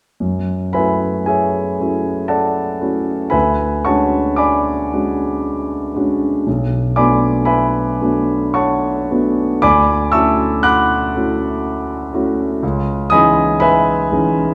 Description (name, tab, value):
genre	classical, impressionist solo piano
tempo	58 BPM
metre	3/4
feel	uneven beats, rubato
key	F# minor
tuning	A4 = 440 Hz
part	warm concert grand piano	solo	0.2-14.5 s	B1 to F#6	-16 LUFS	equal	none
room	wet recital hall reverb, RT60 1.4 s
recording	recorded in a church or concert hall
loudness	-16 LUFS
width	mono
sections	0.2-14.5 A section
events	none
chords	0.2 F#m9; 3.3 Dmaj7#11; 6.5 Bm7; 9.6 Dmaj9; 12.6 C#m9